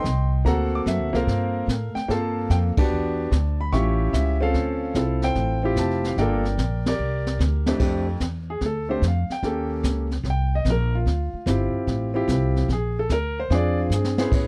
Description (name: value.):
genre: jazz piano trio.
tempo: 147 BPM.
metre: 4/4.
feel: swing 67% on 8ths.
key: unclear.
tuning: A4 = 440 Hz.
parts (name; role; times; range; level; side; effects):
clear grand piano; melody; 0.0-14.5 s; F2 to D6; -27 LUFS; equal; none.
upright bass; bass; 0.0-14.5 s; F1 to A2; -26 LUFS; equal; none.
jazz brush drum kit; drums; 0.0-14.5 s; brushed snare drum, crash cymbal, hi-hat, kick drum, ride cymbal, snare drum; -29 LUFS; equal; none.
room: little or no reverb.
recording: dry, close 1970s-style studio recording.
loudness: -23 LUFS.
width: mono.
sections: 0.0-7.8 A section; 7.8-14.5 B section.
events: band accent 2.7, 6.8; drum fill 7.0-7.8, 13.9-14.3; grand piano solo 7.8-14.5.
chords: 0.5 D7b13; 1.3 Gm11; 2.9 Em7; 3.7 A7b13; 4.5 Dm7; 6.2 Gm7; 7.0 Csus2; 7.8 F69; 9.4 Eb7#11; 11.1 Dm11; 12.7 Bb9.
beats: 0.05 0.46 0.86 | 1.27 1.68 2.09 2.50 | 2.91 3.32 3.72 4.13 | 4.54 4.95 5.36 5.76 | 6.17 6.58 6.99 7.40 | 7.80 8.21 8.62 9.03 | 9.43 9.84 10.25 10.65 | 11.06 11.47 11.88 12.28 | 12.69 13.10 13.50 13.91 | 14.31.